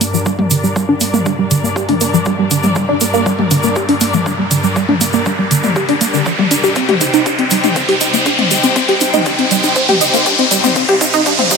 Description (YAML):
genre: melodic techno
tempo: 120 BPM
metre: 4/4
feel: straight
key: G minor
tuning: A4 = 439 Hz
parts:
  - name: clear studio string section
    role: sustained chords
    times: 0.0-11.6 s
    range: G2 to G5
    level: -19 LUFS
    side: left 1 dB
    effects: sidechain pumping, low-pass filter
  - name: tight sequenced synth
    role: arpeggios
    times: 0.0-11.6 s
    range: D3 to C5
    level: -14 LUFS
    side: right 1 dB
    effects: chorus, sidechain pumping, tape echo
  - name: deep house drum kit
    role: drums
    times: 0.0-11.6 s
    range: hi-hat, toms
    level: -20 LUFS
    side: left 3 dB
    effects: sidechain pumping on hats, sidechain pumping on toms
  - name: egg shaker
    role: percussion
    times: 0.0-11.6 s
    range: none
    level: -21 LUFS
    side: right 4 dB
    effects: none
  - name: riser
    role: sound effects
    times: 0.5-11.6 s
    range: none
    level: -18 LUFS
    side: equal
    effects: none
  - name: electronic kick drum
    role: drums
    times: 0.3-11.6 s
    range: none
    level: -26 LUFS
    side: equal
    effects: overdrive, high-pass filter on kick, high-pass filter on room
room: moderate lush hall reverb, RT60 1.6 s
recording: high-pass filter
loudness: -11 LUFS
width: side -5 dB against mid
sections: 0.0-11.6 A section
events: build-up 0.0-11.6; filter sweep on synth arpeggio sound 0.0-11.6; filter sweep on string section 0.0-11.6; filter sweep 0.0-11.6; riser 0.5-11.6; drum fill 6.8-11.6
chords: 0.0 Gm; 6.8 Cm